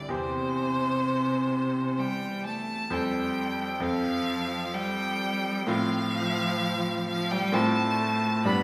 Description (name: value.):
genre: classical, slow romantic movement for piano trio.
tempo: 65 BPM.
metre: 3/4.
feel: rubato.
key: unclear.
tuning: A4 = 439 Hz.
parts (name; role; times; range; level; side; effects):
clear violin; melody; 0.0-8.6 s; C5 to B5; -33 LUFS; equal; none.
clear cello; second line; 0.0-8.6 s; C3 to B3; -32 LUFS; equal; none.
bright grand piano; accompaniment; 0.0-8.6 s; C2 to D5; -32 LUFS; equal; none.
room: wet scoring stage reverb, RT60 1.5 s.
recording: heard from further back in the room.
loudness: -28 LUFS.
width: mono.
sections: 0.0-8.6 A section.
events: none.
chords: 0.1 C/E; 2.9 F; 5.7 F/A.